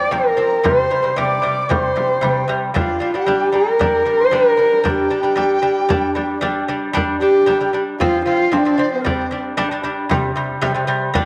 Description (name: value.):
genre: mongolian traditional, Mongolian folk.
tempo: 114 BPM.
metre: 4/4.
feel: straight.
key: G yu mode.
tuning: A4 = 440 Hz.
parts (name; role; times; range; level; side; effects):
dark horsehead fiddle; melody; 0.0-9.4 s; C4 to D5; -19 LUFS; equal; none.
large dizi; second line; 0.0-9.4 s; Bb4 to D6; -28 LUFS; equal; none.
lute; arpeggios; 0.0-11.3 s; C3 to D4; -23 LUFS; equal; none.
frame drum; percussion; 0.1-11.3 s; none; -26 LUFS; equal; none.
room: wet spring reverb, RT60 3.0 s.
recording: none.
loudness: -17 LUFS.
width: mono.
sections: 0.0-7.0 A section; 7.0-11.3 B section.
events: none.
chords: 0.0 F5; 0.6 C5; 2.8 G5; 8.0 F5; 9.0 G5; 10.1 C5.